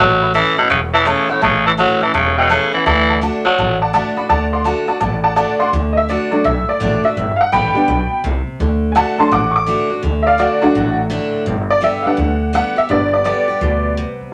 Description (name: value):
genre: rockabilly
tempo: 167 BPM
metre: 4/4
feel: swing 65% on 8ths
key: D major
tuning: A4 = 440 Hz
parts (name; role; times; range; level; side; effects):
- raspy tenor saxophone; melody; 0.0-3.8 s; A2 to F#3; -15 LUFS; equal; none
- honky-tonk upright piano; accompaniment; 0.0-14.3 s; F#3 to D6; -18 LUFS; equal; none
- picked steel-string acoustic guitar; accompaniment; 0.0-14.3 s; E2 to G4; -25 LUFS; equal; none
- upright bass; bass; 0.0-14.2 s; E1 to D2; -23 LUFS; equal; none
room: moderate studio ambience, RT60 0.5 s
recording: none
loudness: -16 LUFS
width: mono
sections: 0.0-5.7 A section; 5.7-14.3 B section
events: honky-tonk piano solo 5.7-14.3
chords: 0.0 A; 2.9 D; 7.2 G; 8.6 D; 11.5 G